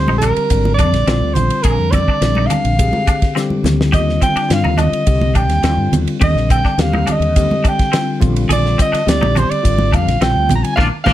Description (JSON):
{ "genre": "electric jazz fusion", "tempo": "105 BPM", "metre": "4/4", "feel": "straight", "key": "unclear", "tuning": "A4 = 440 Hz", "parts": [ { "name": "warm soprano saxophone", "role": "melody", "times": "0.0-11.1 s", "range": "Bb4 to Bb5", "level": "-18 LUFS", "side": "right 2 dB", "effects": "slapback echo" }, { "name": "bell-like tine electric piano", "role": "accompaniment", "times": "0.0-11.1 s", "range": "D3 to Ab4", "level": "-20 LUFS", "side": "left 4 dB", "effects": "none" }, { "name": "mellow fretless electric bass", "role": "bass", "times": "0.0-11.1 s", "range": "Ab1 to G2", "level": "-17 LUFS", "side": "equal", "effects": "ensemble chorus" }, { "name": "twangy electric guitar", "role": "stabs", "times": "0.1-11.1 s", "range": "Bb3 to Ab4", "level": "-24 LUFS", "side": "left 1 dB", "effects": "ensemble chorus" }, { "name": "congas", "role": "percussion", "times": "0.1-11.1 s", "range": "none", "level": "-22 LUFS", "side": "right 3 dB", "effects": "none" }, { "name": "damped 70s drum kit", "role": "drums", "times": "0.2-11.1 s", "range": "hi-hat, kick drum, ride cymbal, snare drum", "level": "-18 LUFS", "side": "equal", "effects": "none" } ], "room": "little or no reverb", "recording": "none", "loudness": "-12 LUFS", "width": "side -13 dB against mid", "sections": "0.0-11.1 A section", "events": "drum fill 3.4-3.9; band accent 10.8-11.1", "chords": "0.0 Bb7; 3.9 Eb6; 8.2 Bb7" }